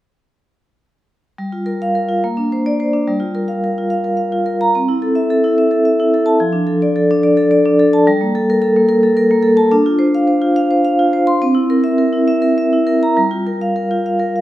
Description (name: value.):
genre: classical, contemporary piece for solo vibraphone.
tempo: 72 BPM (dotted quarters).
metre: 6/8.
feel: straight.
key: G dorian.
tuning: A4 = 440 Hz.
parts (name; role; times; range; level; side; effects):
vibraphone with medium hard mallets; solo; 1.4-14.4 s; F3 to C6; -13 LUFS; equal; none.
room: wet recital hall reverb, RT60 1.4 s.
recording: minimal, uncompressed stereo recording.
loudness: -13 LUFS.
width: side -14 dB against mid.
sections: 1.4-14.4 A section.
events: none.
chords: 1.4 Gm7; 2.2 Bbadd9; 3.1 Gm7; 4.8 C6; 6.4 F6; 8.1 Gmadd9; 9.7 Dm7; 11.4 C7; 13.2 Gm7.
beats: | 1.39 2.25 | 3.08 3.92 | 4.76 5.59 | 6.41 7.24 | 8.07 8.89 | 9.72 10.56 | 11.41 12.28 | 13.16 14.05.